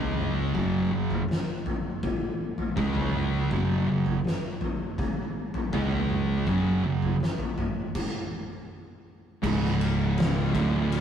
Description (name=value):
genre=stoner and doom metal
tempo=81 BPM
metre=4/4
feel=straight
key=unclear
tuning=A4 = 441 Hz
part: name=thick fuzz guitar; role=riff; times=0.0-11.0 s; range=C#2 to C#4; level=-29 LUFS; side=left 5 dB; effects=distortion
part: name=thick fuzz guitar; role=riff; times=0.0-11.0 s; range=C#2 to C#4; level=-27 LUFS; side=right 4 dB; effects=distortion
part: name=picked electric bass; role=bass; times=0.0-11.0 s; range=C#1 to C#2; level=-33 LUFS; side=equal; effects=overdrive
part: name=oversized low-tuned drum kit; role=drums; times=0.2-11.0 s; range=crash cymbal, kick drum, ride cymbal, snare drum, toms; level=-29 LUFS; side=left 1 dB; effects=none
room=moderate small room reverb, RT60 0.5 s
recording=rough rehearsal-room recording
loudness=-24 LUFS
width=side -8 dB against mid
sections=0.0-9.4 A section; 9.4-11.0 B section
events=stop 8.0-9.4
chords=0.0 C#5; 0.5 F#5; 2.8 C#5; 3.5 F#5; 5.7 C#5; 6.5 F#5; 9.4 C#5